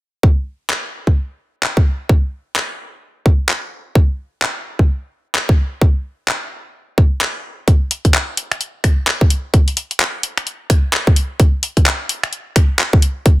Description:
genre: UK garage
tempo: 129 BPM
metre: 4/4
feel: swing 60% on 16ths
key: none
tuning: none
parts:
  - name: electronic kick drum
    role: drums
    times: 0.2-13.4 s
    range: none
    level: -12 LUFS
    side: equal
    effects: none
  - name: garage drum kit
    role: drums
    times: 0.7-13.4 s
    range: finger snaps, handclaps, hi-hat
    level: -18 LUFS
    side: left 1 dB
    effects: soft clipping on snare
room: digital ambience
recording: dense, heavily limited modern master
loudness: -15 LUFS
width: side -18 dB against mid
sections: 0.2-7.7 A section; 7.7-13.4 B section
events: none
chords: none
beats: | 0.23 0.70 1.16 1.63 | 2.09 2.56 3.02 3.49 | 3.96 4.42 4.88 5.35 | 5.82 6.28 6.75 7.21 | 7.68 8.14 8.61 9.07 | 9.54 10.00 10.47 10.93 | 11.40 11.86 12.33 12.79 | 13.26

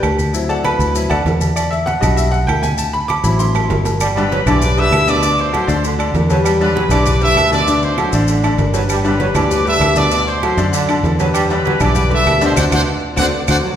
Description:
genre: latin, salsa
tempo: 196 BPM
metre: 4/4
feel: straight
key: unclear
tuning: A4 = 440 Hz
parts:
  - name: bright upright piano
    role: accompaniment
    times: 0.0-13.6 s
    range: D3 to D6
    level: -18 LUFS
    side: left 2 dB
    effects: none
  - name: fingered electric bass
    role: bass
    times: 0.0-13.6 s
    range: G1 to F#2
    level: -18 LUFS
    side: equal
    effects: none
  - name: claves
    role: percussion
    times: 0.0-13.6 s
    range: none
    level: -31 LUFS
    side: right 6 dB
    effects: none
  - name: congas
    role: percussion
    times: 0.0-13.6 s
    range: none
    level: -25 LUFS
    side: left 1 dB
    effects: none
  - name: maracas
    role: percussion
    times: 0.0-13.6 s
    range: none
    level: -29 LUFS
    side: left 6 dB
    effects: none
  - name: timbales and agogo bells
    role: percussion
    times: 0.0-13.6 s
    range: none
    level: -23 LUFS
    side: right 4 dB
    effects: none
  - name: bright trombone section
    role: second line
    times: 4.0-13.7 s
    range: B2 to G3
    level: -22 LUFS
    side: right 3 dB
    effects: none
  - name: bright trumpet section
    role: melody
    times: 4.2-13.6 s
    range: B4 to E6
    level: -18 LUFS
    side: right 1 dB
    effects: none
room: wet recital hall reverb, RT60 1.9 s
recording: recorded in a church or concert hall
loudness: -13 LUFS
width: side -10 dB against mid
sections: 0.0-4.0 A section; 4.0-13.8 B section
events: upright piano solo 0.0-4.0; drum fill 3.4-4.0; band accent 12.6-13.8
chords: 0.3 D7; 1.6 Em7; 2.8 D7; 4.0 G; 5.2 D7; 6.5 Em7; 7.7 D7; 8.9 G; 10.1 D7; 11.3 Em7; 12.6 D7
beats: 0.03 | 0.34 0.65 0.95 1.26 | 1.56 1.87 2.17 2.48 | 2.79 3.09 3.40 3.70 | 4.01 4.31 4.62 4.92 | 5.23 5.54 5.84 6.15 | 6.45 6.76 7.06 7.37 | 7.67 7.98 8.29 8.59 | 8.90 9.20 9.51 9.82 | 10.12 10.43 10.73 11.04 | 11.35 11.65 11.96 12.26 | 12.57 12.87 13.18 13.48

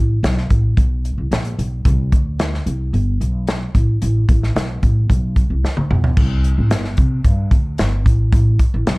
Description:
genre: uptempo 1960s-style soul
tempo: 111 BPM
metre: 4/4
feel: straight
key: unclear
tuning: A4 = 440 Hz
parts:
  - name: upright bass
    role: bass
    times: 0.0-9.0 s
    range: G1 to C3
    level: -17 LUFS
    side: equal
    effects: none
  - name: natural country drum kit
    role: drums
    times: 0.2-9.0 s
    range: crash cymbal, hi-hat, kick drum, snare drum, toms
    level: -17 LUFS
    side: equal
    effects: none
room: little or no reverb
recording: cassette tape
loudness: -14 LUFS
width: side -26 dB against mid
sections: 0.0-6.2 A section; 6.2-9.0 B section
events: drum fill 5.6-6.2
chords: none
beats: 0.23 0.77 1.31 | 1.85 2.39 2.93 3.47 | 4.01 4.55 5.09 5.63 | 6.17 6.71 7.25 7.79 | 8.33 8.87

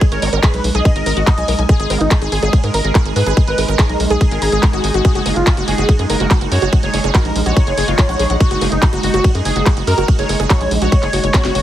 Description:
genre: psychedelic trance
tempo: 143 BPM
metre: 4/4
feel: straight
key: unclear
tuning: A4 = 440 Hz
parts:
  - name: bubbling stepped-filter texture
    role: sustained chords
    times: 0.0-11.6 s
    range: G#3 to D#4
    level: -23 LUFS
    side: right 2 dB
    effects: chorus, built-in reverb, sidechain pumping
  - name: wide unison pluck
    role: riff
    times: 0.0-11.6 s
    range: E#4 to A#5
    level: -22 LUFS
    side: moving between left 6 dB and right 9 dB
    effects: auto-pan, sidechain pumping, dub echo
  - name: drum and bass drum kit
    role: drums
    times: 0.0-11.6 s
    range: handclaps, hi-hat, ride cymbal, snare drum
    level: -22 LUFS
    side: right 1 dB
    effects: none
  - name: electronic kick drum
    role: drums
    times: 0.0-11.4 s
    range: none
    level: -12 LUFS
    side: equal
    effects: none
  - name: wide unison lead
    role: melody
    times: 0.1-11.6 s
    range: D#4 to D#5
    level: -21 LUFS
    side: equal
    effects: phaser, sidechain pumping, digital delay
  - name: tight sequencer bass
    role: bass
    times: 0.1-11.6 s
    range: F#1 to G#2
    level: -18 LUFS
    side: equal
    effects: none
  - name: vowel-sweep wobble bass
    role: second line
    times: 0.2-10.9 s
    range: F#3 to C#4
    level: -29 LUFS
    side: right 5 dB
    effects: chorus, sidechain pumping, high-pass filter, tape echo
room: little or no reverb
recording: heavily compressed radio sound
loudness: -12 LUFS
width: side -12 dB against mid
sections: 0.0-11.6 A section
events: drum fill 11.3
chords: 0.0 G#5; 5.0 F#5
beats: | 0.01 0.43 0.85 1.27 | 1.69 2.11 2.53 2.95 | 3.37 3.79 4.21 4.63 | 5.05 5.47 5.89 6.31 | 6.73 7.15 7.57 7.99 | 8.40 8.82 9.24 9.66 | 10.08 10.50 10.92 11.34

